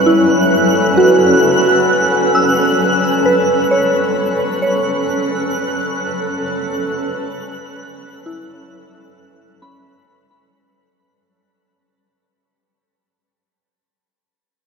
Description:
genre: ambient.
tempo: 66 BPM.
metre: 4/4.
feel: straight.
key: unclear.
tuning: A4 = 439 Hz.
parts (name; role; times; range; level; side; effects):
granular cloud pad; sustained chords; 0.0-11.0 s; F#3 to B4; -16 LUFS; right 1 dB; built-in reverb.
soft synth bell; arpeggios; 0.0-12.6 s; C#4 to E6; -16 LUFS; equal; chorus, ping-pong delay.
twinkling granular texture; texture; 0.0-11.0 s; F#6; -21 LUFS; equal; built-in reverb.
room: wet shimmer reverb, RT60 6.3 s.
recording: none.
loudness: -12 LUFS.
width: side -5 dB against mid.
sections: 0.0-11.0 A section.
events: fade-out 1.3-11.0.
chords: 0.0 F#m.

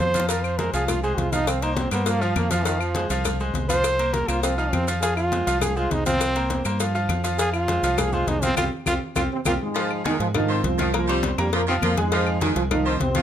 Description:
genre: latin, salsa.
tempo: 203 BPM.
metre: 4/4.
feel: straight.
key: F minor.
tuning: A4 = 440 Hz.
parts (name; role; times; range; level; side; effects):
bright trombone; melody; 0.0-9.5 s; Eb3 to C5; -25 LUFS; right 1 dB; none.
bright grand piano; accompaniment; 0.0-13.2 s; F3 to C6; -27 LUFS; equal; none.
deep dub fingered electric bass; bass; 0.0-13.2 s; C2 to Ab2; -26 LUFS; equal; none.
congas; percussion; 0.0-13.2 s; none; -31 LUFS; left 3 dB; none.
maracas; percussion; 0.0-9.5 s; none; -35 LUFS; right 7 dB; none.
cowbell and bongos; percussion; 0.1-13.2 s; none; -31 LUFS; left 9 dB; none.
claves; percussion; 0.4-12.9 s; none; -34 LUFS; left 8 dB; none.
warm trombone section; melody; 9.3-13.2 s; G2 to F4; -25 LUFS; right 2 dB; none.
clear saxophone section; second line; 9.7-13.2 s; Eb3 to G3; -28 LUFS; right 1 dB; none.
room: light reverb.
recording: close, detailed microphones.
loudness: -20 LUFS.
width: side -10 dB against mid.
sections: 0.0-9.8 A section; 9.8-13.2 B section.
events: drum fill 0.0, 9.2-9.8; trombone solo 0.0-9.8; band accent 8.6-9.8.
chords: 0.3 Fm; 1.5 C7sus4; 2.7 Fm; 3.8 C7sus4; 5.0 Fm; 6.2 C7sus4; 7.4 Fm; 8.6 Csus4; 9.8 Fm7; 10.9 C7sus4; 12.1 Fm7.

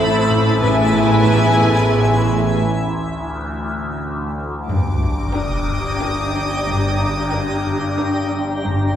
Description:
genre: cinematic.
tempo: 91 BPM.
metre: 3/4.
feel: straight.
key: G minor from 4.7 s.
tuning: A4 = 439 Hz.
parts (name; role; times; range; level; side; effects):
dark studio violin section; melody; 0.0-8.5 s; G5 to B5; -23 LUFS; left 2 dB; none.
warm chamber violin section; second line; 0.0-8.5 s; Bb4 to C5; -26 LUFS; right 1 dB; none.
dark chamber viola section; accompaniment; 0.0-8.5 s; D4 to E4; -24 LUFS; right 2 dB; none.
mellow French horn section; sustained chords; 0.0-2.6 s; B3 to A4; -22 LUFS; right 1 dB; none.
twinkling granular texture; sustained chords; 0.0-9.0 s; D4 to B5; -24 LUFS; equal; built-in reverb.
concert harp; riff; 0.0-9.0 s; G2 to G3; -25 LUFS; left 4 dB; none.
dark chamber double bass section; bass; 0.0-9.0 s; G1 to A1; -23 LUFS; right 3 dB; none.
warm chamber cello section; bass; 0.0-9.0 s; G2 to A2; -21 LUFS; left 1 dB; none.
overtone-sweeping drone; drone; 0.0-9.0 s; G1 to D2; -25 LUFS; equal; chorus, built-in reverb, phaser.
sub drop; sound effects; 4.7-6.7 s; none; -24 LUFS; equal; none.
dark chamber violin section; texture; 4.7-8.3 s; D6 to Eb6; -27 LUFS; left 1 dB; none.
room: wet recital hall reverb, RT60 1.5 s.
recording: recorded in a church or concert hall.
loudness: -16 LUFS.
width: side -10 dB against mid.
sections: 0.0-4.7 A section; 4.7-9.0 B section.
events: break 2.6-4.7; impact 4.7-6.7.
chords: 0.0 Amadd9; 0.6 E/A; 2.6 N.C.; 4.7 Gm.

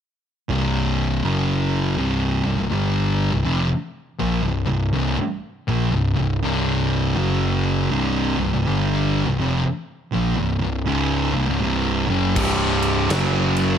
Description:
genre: stoner and doom metal.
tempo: 81 BPM.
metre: 4/4.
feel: swing 63% on 8ths.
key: unclear.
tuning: A4 = 440 Hz.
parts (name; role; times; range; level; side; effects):
thick fuzz guitar; riff; 0.5-13.8 s; C2 to G3; -22 LUFS; left 6 dB; distortion.
thick fuzz guitar; riff; 0.5-13.8 s; C2 to G3; -23 LUFS; right 7 dB; distortion.
overdriven picked electric bass; bass; 0.5-13.8 s; C1 to Bb1; -26 LUFS; equal; none.
biting overdriven guitar; riff; 12.4-13.8 s; C2 to F#3; -22 LUFS; right 2 dB; none.
big rock drum kit; drums; 12.4-13.7 s; crash cymbal, kick drum, snare drum; -26 LUFS; right 1 dB; none.
room: light reverb, small room ambience.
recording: none.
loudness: -19 LUFS.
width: side -8 dB against mid.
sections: 0.5-12.4 A section; 12.4-13.8 B section.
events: none.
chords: 0.5 C5; 1.2 F#5; 2.0 C5; 7.2 F#5; 7.9 C5; 13.1 F#5.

